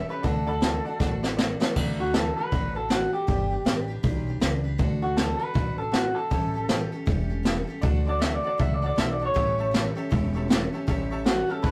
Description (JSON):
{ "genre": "rockabilly", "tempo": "158 BPM", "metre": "4/4", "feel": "swing 62% on 8ths", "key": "D major", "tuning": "A4 = 440 Hz", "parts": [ { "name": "electric guitar through a small old amp", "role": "melody", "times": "0.0-11.7 s", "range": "F#4 to E5", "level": "-30 LUFS", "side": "equal", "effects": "none" }, { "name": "picked steel-string acoustic guitar", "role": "accompaniment", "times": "0.0-11.7 s", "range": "A2 to B4", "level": "-38 LUFS", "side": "equal", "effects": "none" }, { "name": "tack piano", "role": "accompaniment", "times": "0.1-1.7, 7.8-11.7 s", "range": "C#5 to B5", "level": "-40 LUFS", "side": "equal", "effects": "none" }, { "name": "upright bass", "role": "bass", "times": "0.2-11.7 s", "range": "E1 to D2", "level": "-32 LUFS", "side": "equal", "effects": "none" }, { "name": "jazz brush drum kit", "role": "drums", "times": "0.2-11.7 s", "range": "crash cymbal, hi-hat, kick drum, snare drum", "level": "-28 LUFS", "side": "equal", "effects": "none" } ], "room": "moderate studio reverb, RT60 0.5 s", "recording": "rough rehearsal-room recording, warm saturation", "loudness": "-26 LUFS", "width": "mono", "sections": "0.0-1.8 A section; 1.8-11.7 A section", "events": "drum fill 1.0-1.8", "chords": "0.2 D; 3.3 G; 4.8 D; 6.3 A7; 7.8 D; 9.4 A7", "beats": "| 0.23 0.61 0.99 1.37 | 1.75 2.13 2.51 2.89 | 3.27 3.65 4.03 4.41 | 4.79 5.17 5.55 5.93 | 6.31 6.69 7.07 7.45 | 7.83 8.21 8.59 8.97 | 9.35 9.73 10.11 10.49 | 10.87 11.25 11.63" }